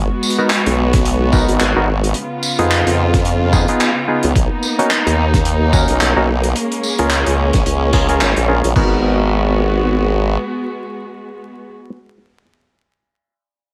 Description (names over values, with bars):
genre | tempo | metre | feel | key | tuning
glitch hop | 109 BPM | 4/4 | swing 58% on 16ths | G# dorian | A4 = 440 Hz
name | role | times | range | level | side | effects
warm chamber string section | sustained chords | 0.0-11.7 s | C#3 to F#4 | -23 LUFS | equal | sidechain pumping
formant-sweep wobble bass | bass | 0.0-10.4 s | G#1 to E#2 | -19 LUFS | equal | chorus, tube saturation
modern studio drum kit | drums | 0.2-8.9 s | crash cymbal, handclaps, hi-hat, snare drum, tambourine | -23 LUFS | equal | none
mellow clav | stabs | 0.4-11.9 s | B3 to A#4 | -22 LUFS | equal | vintage 12-bit sampler grit, sidechain pumping, digital delay
electronic kick drum | drums | 0.9-8.9 s | none | -19 LUFS | equal | overdrive
room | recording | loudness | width
light reverb | vinyl crackle | -15 LUFS | mono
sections
0.0-8.8 A section; 8.8-11.0 B section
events
drop 0.0-8.8; band accent 8.2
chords
0.0 G#m7; 2.2 C#7; 4.4 Bmaj7; 6.6 A#m7; 8.8 G#m7